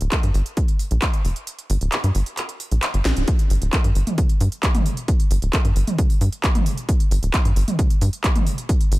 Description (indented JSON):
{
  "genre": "driving peak-time techno",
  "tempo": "133 BPM",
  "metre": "4/4",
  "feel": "straight",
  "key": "G minor",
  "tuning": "A4 = 443 Hz",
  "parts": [
    { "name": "tight sequencer bass", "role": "bass", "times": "0.0-9.0 s", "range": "D1 to G2", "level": "-19 LUFS", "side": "equal", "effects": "sidechain pumping" },
    { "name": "techno drum kit", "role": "drums", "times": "0.0-9.0 s", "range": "handclaps, hi-hat, snare drum, toms", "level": "-25 LUFS", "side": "right 1 dB", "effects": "none" },
    { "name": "electronic kick drum", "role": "drums", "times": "0.1-8.8 s", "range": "none", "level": "-19 LUFS", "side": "equal", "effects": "overdrive" }
  ],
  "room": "little or no reverb",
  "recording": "none",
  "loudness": "-18 LUFS",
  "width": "side -19 dB against mid",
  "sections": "0.0-3.3 A section; 3.3-9.0 B section",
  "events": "kick drops out 1.5-3.3; drum fill 3.1; band accent 3.1; drop 3.3-9.0",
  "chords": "none"
}